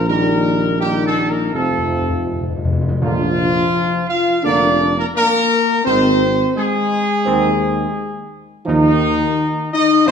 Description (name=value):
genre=classical, ceremonial fanfare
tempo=85 BPM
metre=4/4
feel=straight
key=Bb major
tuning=A4 = 436 Hz
part: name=warm trumpet section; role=melody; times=0.0-10.1 s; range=Eb4 to F5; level=-18 LUFS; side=right 1 dB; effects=none
part: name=mellow French horn section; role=sustained chords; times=0.0-10.1 s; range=Eb3 to F4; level=-20 LUFS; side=left 5 dB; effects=none
part: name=warm trombone section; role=sustained chords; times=0.0-10.1 s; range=C3 to Eb4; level=-22 LUFS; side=right 3 dB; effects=none
part: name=dark tuba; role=bass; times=0.0-10.1 s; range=F1 to Eb2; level=-21 LUFS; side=right 2 dB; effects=none
part: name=timpani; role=percussion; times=1.5-4.1 s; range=F2 to Bb2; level=-22 LUFS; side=left 2 dB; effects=none
room=wet scoring stage reverb, RT60 1.7 s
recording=none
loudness=-14 LUFS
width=side -7 dB against mid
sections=0.0-3.0 A section; 3.0-10.1 B section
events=timpani fill 1.5-3.0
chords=0.1 Eb/Bb; 1.5 F; 3.0 Bb; 5.9 Ab; 8.7 Ebsus2